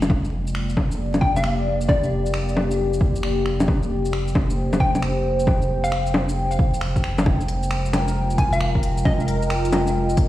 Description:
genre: future garage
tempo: 134 BPM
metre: 4/4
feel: swing 65% on 16ths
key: unclear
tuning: A4 = 440 Hz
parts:
  - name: dark analog pad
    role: sustained chords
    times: 0.0-10.3 s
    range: Ab3 to G5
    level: -25 LUFS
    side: left 1 dB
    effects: chorus, phaser, sidechain pumping
  - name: warm sub bass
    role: bass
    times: 0.0-10.3 s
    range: F1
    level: -24 LUFS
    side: equal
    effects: sidechain pumping
  - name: organic electronic drum kit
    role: drums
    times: 0.0-10.3 s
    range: bongos, finger snaps, hi-hat, shaker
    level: -26 LUFS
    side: left 1 dB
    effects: overdrive
  - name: electronic kick drum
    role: drums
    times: 0.1-10.3 s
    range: none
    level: -21 LUFS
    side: equal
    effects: overdrive
  - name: hollow square pluck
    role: melody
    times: 1.2-9.5 s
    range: D5 to Ab5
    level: -28 LUFS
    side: left 1 dB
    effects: chorus, tape echo
  - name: backwards swelling texture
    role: texture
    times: 7.4-10.3 s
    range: Bb4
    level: -33 LUFS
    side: right 3 dB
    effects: built-in reverb
room: light reverb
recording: played on a big sound system in a bare room, stone room reverb, vinyl crackle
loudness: -19 LUFS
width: side -14 dB against mid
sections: 0.0-7.3 A section; 7.3-10.3 B section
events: none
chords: 0.1 Gm/F; 7.3 Fm9

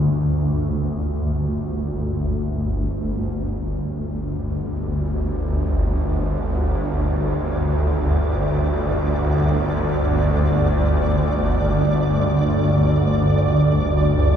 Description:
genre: ambient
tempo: free time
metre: none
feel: none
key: unclear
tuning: A4 = 440 Hz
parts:
  - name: swarming drone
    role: drone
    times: 0.0-14.4 s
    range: G1 to D2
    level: -18 LUFS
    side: equal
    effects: built-in reverb
  - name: flickering grainy texture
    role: texture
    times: 4.7-14.4 s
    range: D5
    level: -28 LUFS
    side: right 2 dB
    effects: built-in reverb
room: moderate huge ambient reverb, RT60 7.5 s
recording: none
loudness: -18 LUFS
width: side -8 dB against mid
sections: 0.0-3.4 A section; 3.4-14.4 B section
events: fade-in on synth texture 3.4-14.4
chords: 0.0 G5

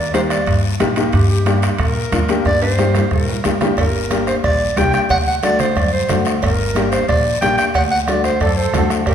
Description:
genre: latin, cumbia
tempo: 181 BPM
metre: 4/4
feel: straight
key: G minor, G harmonic minor from 3.8 s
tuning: A4 = 442 Hz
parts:
  - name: warm clarinet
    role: melody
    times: 0.0-9.1 s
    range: G4 to G5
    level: -19 LUFS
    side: right 1 dB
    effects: none
  - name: upright bass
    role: bass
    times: 0.0-9.1 s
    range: G1 to Bb2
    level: -21 LUFS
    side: equal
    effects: none
  - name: warm upright piano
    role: accompaniment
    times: 0.1-9.0 s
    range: A3 to G4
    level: -21 LUFS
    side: left 4 dB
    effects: none
  - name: bombo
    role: percussion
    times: 0.1-9.1 s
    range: none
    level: -21 LUFS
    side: right 2 dB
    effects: none
  - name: congas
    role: percussion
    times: 0.1-8.9 s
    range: none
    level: -27 LUFS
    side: right 3 dB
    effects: none
  - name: guiro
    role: percussion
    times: 0.1-9.1 s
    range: none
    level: -30 LUFS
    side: left 6 dB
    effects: none
  - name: timbales and cowbell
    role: percussion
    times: 0.1-9.1 s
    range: none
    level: -28 LUFS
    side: right 4 dB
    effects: none
  - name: musette accordion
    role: second line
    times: 8.4-9.1 s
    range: G4 to A4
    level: -23 LUFS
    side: right 5 dB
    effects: none
room: wet recital hall reverb, RT60 1.8 s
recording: recorded in a church or concert hall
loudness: -14 LUFS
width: side -9 dB against mid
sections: 0.0-3.8 A section; 3.8-9.1 B section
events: drum fill 2.5-3.8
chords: 0.0 Eb; 1.1 Gm; 5.1 D7; 6.4 Gm; 7.8 D7

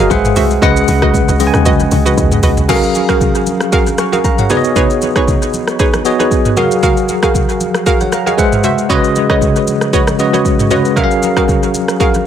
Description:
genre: amapiano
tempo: 116 BPM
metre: 4/4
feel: swing 55% on 16ths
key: F# major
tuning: A4 = 441 Hz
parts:
  - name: bell-like tine electric piano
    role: accompaniment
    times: 0.0-12.3 s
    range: C#3 to C#6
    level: -14 LUFS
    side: left 1 dB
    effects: fast stereo tremolo
  - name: hollow square pluck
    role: stabs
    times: 0.0-12.1 s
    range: D#4 to E#5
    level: -17 LUFS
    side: right 4 dB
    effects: chorus, dub echo
  - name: deep log drum bass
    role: bass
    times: 0.0-2.7 s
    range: G#1 to D#2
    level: -15 LUFS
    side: equal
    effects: none
  - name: afro-pop drum kit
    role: drums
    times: 0.1-12.3 s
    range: crash cymbal, hi-hat, kick drum, rim click, shaker, toms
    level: -16 LUFS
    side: equal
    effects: dub echo
  - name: congas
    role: percussion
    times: 0.4-12.3 s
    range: none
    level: -24 LUFS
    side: right 2 dB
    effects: dub echo
room: light reverb, digital ambience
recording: echo-heavy mix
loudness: -10 LUFS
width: side -9 dB against mid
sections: 0.0-2.7 A section; 2.7-12.3 B section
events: drop 0.0-2.7; drum fill 1.7-2.7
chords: 0.1 G#7alt; 0.6 C#9sus4; 2.7 F#maj9; 4.5 B69; 6.6 F#maj9; 8.4 G#7alt; 8.9 C#9sus4; 11.0 F#maj9

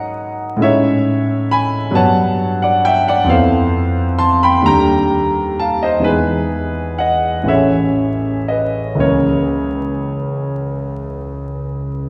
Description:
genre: classical, impressionist solo piano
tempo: 37-46 BPM (dotted quarters)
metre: 6/8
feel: rubato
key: unclear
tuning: A4 = 440 Hz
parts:
  - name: clear concert grand piano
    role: solo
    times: 0.0-12.1 s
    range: A1 to C#7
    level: -16 LUFS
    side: equal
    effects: none
room: wet concert hall reverb, RT60 1.9 s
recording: heard from further back in the room, vinyl crackle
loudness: -16 LUFS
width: mono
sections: 0.0-12.1 A section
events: none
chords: 0.0 F#69/G#; 0.6 Amaj7#11; 2.0 Gmaj7#11; 3.3 Fmaj7#11; 4.7 D#maj7#11; 6.0 Emaj7; 7.5 Amaj7; 9.0 C#m6

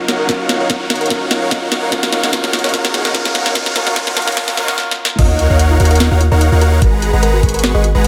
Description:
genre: future bass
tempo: 147 BPM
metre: 4/4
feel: swing 54% on 16ths, half-time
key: G# dorian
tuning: A4 = 439 Hz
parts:
  - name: warm grand piano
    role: accompaniment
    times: 0.0-5.2 s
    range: F#3 to E#4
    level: -25 LUFS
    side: equal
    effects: sidechain pumping, delay
  - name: airy breathy pad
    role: sustained chords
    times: 0.1-4.8 s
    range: D#2 to G#4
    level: -36 LUFS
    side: equal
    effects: none
  - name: supersaw chords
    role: riff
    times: 0.0-8.1 s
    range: G#3 to C#6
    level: -21 LUFS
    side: equal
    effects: sidechain pumping
  - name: riser and sub drop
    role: sound effects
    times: 0.0-6.8 s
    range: none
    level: -26 LUFS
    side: equal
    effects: none
  - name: thumb-piano-like synth pluck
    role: arpeggios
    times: 0.1-8.1 s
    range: E#4 to F#5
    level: -28 LUFS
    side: equal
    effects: chorus, sidechain pumping, delay
  - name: trap drum kit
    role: drums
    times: 0.1-8.1 s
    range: crash cymbal, hi-hat, rim click, snare drum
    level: -20 LUFS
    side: equal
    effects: studio reverb
  - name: electronic kick drum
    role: drums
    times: 0.3-7.5 s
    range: none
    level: -17 LUFS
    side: equal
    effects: studio reverb
  - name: thumb-piano-like synth pluck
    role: melody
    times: 5.2-8.1 s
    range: A#4 to D#5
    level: -24 LUFS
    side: equal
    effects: chorus, sidechain pumping, delay
  - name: long sustained 808-style bass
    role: bass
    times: 5.2-8.1 s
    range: G#1 to D#2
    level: -15 LUFS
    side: equal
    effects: sidechain pumping
room: moderate lush hall reverb, RT60 1.8 s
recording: high-pass filter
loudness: -14 LUFS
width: mono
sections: 0.0-5.2 A section; 5.2-8.1 B section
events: build-up 0.0-5.2; drum fill 0.0-4.8, 4.8-5.2; riser 0.0-4.8; drop 5.2-8.1; impact 5.2-6.8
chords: 0.3 G#5; 1.9 F#maj9; 3.6 C#7sus4; 5.2 D#m9; 6.8 G#m7

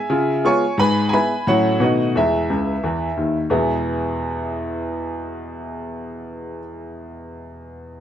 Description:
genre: jazz, stride piano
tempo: 177 BPM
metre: 4/4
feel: swing 65% on 8ths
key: E major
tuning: A4 = 440 Hz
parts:
  - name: clear baby grand piano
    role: solo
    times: 0.0-8.0 s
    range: C#2 to C#6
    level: -19 LUFS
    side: equal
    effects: none
room: moderate studio reverb, RT60 0.8 s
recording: none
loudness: -17 LUFS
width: side -10 dB against mid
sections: 0.0-3.5 A section; 3.5-6.2 B section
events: grand piano fill 2.5-3.5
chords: 0.1 C#7; 0.8 E/G#; 1.5 F#m/A; 1.8 B7; 2.1 E

